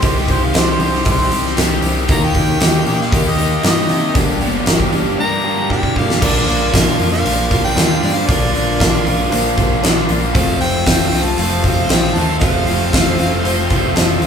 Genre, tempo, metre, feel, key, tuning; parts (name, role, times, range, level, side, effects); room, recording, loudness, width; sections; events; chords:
classic rock; 116 BPM; 4/4; straight; A4 = 440 Hz
warm harmonica; melody; 0.0-13.9 s; G4 to Bb5; -22 LUFS; equal
picked steel-string acoustic guitar; accompaniment; 0.0-14.3 s; G2 to Bb4; -28 LUFS; left 3 dB
tack piano; accompaniment; 0.0-14.3 s; C4 to C6; -28 LUFS; right 2 dB
crunchy overdriven guitar; riff; 0.0-14.3 s; F2 to G4; -20 LUFS; left 5 dB
overdriven electric guitar; riff; 0.0-14.3 s; F2 to G4; -22 LUFS; right 6 dB; spring reverb
growling picked electric bass; bass; 0.0-14.3 s; F1 to C3; -21 LUFS; equal; overdrive
huge arena drum kit; drums; 0.0-14.3 s; crash cymbal, hi-hat, kick drum, snare drum; -16 LUFS; equal
smooth overdriven lead guitar; second line; 6.2-13.9 s; Bb4 to F5; -26 LUFS; right 2 dB
moderate large studio reverb, RT60 1.2 s; band playing live in one room; -13 LUFS; side -7 dB against mid
0.0-6.2 A section; 6.2-14.3 B section
harmonica solo 0.0-6.2; drum fill 5.7-6.2; honky-tonk piano fill 13.4-14.3
0.0 Cm; 2.1 Eb; 4.2 Gm; 6.2 Bb; 10.3 F